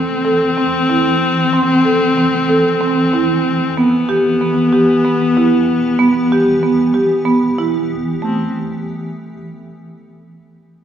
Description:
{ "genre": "contemporary instrumental, chamber music in an uneven meter", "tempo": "188 BPM (eighths)", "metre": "7/8", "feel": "straight", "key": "A minor", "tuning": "A4 = 440 Hz", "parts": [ { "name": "warm viola", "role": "second line", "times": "0.0-8.5 s", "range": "B3 to C4", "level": "-16 LUFS", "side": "left 3 dB", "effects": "none" }, { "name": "granular cloud pad", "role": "sustained chords", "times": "0.0-8.5 s", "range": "E3 to A4", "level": "-22 LUFS", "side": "equal", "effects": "built-in reverb" }, { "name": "marimba with medium mallets", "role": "arpeggios", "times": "0.0-8.5 s", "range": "A3 to A4", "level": "-16 LUFS", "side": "right 3 dB", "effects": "none" } ], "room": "wet recital hall reverb, RT60 1.6 s", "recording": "dark, warm production", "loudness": "-12 LUFS", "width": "side -9 dB against mid", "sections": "0.0-8.2 A section; 8.2-10.5 B section", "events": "none", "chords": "0.0 Am; 3.8 Em; 8.2 Am" }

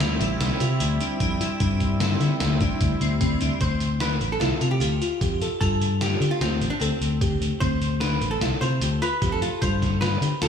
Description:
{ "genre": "progressive instrumental, band music in an uneven meter", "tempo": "150 BPM", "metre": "5/4", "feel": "straight", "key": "D dorian", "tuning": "A4 = 440 Hz", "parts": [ { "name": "warm analog pad", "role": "accompaniment", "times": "0.0-3.6 s", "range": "G3 to E4", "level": "-29 LUFS", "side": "right 2 dB", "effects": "chorus, tremolo, slapback echo" }, { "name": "glassy wavetable pluck", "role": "arpeggios", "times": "0.0-10.5 s", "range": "C4 to A4", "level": "-30 LUFS", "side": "left 1 dB", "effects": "chorus, slapback echo" }, { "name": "fingered electric bass", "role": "bass", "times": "0.0-10.5 s", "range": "A1 to D3", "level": "-24 LUFS", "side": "left 2 dB", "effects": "none" }, { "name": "trip hop sampler-style drum kit", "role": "drums", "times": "0.0-10.5 s", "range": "hi-hat, kick drum, snare drum", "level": "-26 LUFS", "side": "equal", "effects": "none" }, { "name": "archtop guitar, miked and amplified", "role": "melody", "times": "3.6-10.5 s", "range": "C4 to C5", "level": "-28 LUFS", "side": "right 1 dB", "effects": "slapback echo, digital delay" } ], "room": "moderate lush hall reverb, RT60 2.2 s", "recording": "big arena sound, studio ambience", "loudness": "-21 LUFS", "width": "side -7 dB against mid", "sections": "0.0-3.6 A section; 3.6-10.5 B section", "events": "none", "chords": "0.0 Dm7" }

